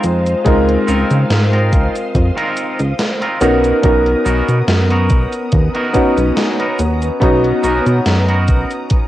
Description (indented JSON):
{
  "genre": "vaporwave",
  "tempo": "71 BPM",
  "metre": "4/4",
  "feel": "swing 54% on 16ths",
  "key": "unclear",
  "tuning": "A4 = 440 Hz",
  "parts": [
    { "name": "warm electric grand piano", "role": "accompaniment", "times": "0.0-9.1 s", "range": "Ab3 to Bb5", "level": "-16 LUFS", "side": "equal", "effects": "wide subtle chorus, cassette tape, tape echo, plate reverb" },
    { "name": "soft string machine", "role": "sustained chords", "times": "0.0-9.1 s", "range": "Cb4 to Eb6", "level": "-26 LUFS", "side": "equal", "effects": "ensemble chorus, vintage 12-bit sampler grit, cassette tape, plate reverb" },
    { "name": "twangy electric guitar", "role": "riff", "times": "0.0-8.7 s", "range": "Cb4 to Bb4", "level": "-22 LUFS", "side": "right 1 dB", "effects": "wide subtle chorus, cassette tape, tape echo" },
    { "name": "chorused synth bass", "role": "bass", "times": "0.0-8.6 s", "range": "Cb2 to Db3", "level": "-15 LUFS", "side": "equal", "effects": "none" },
    { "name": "gated 80s digital drum machine", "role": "drums", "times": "0.0-9.1 s", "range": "cabasa, hi-hat, snare drum", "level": "-20 LUFS", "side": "equal", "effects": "gated reverb, gated reverb snare, cassette tape" },
    { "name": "electronic kick drum", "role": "drums", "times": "0.5-9.1 s", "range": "none", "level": "-14 LUFS", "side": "equal", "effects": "cassette tape" }
  ],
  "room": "light reverb",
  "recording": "home recording on cassette",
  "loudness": "-12 LUFS",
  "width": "side -14 dB against mid",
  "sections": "0.0-9.1 A section",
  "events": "none",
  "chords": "0.0 Dbmaj13; 3.4 Cbmaj7"
}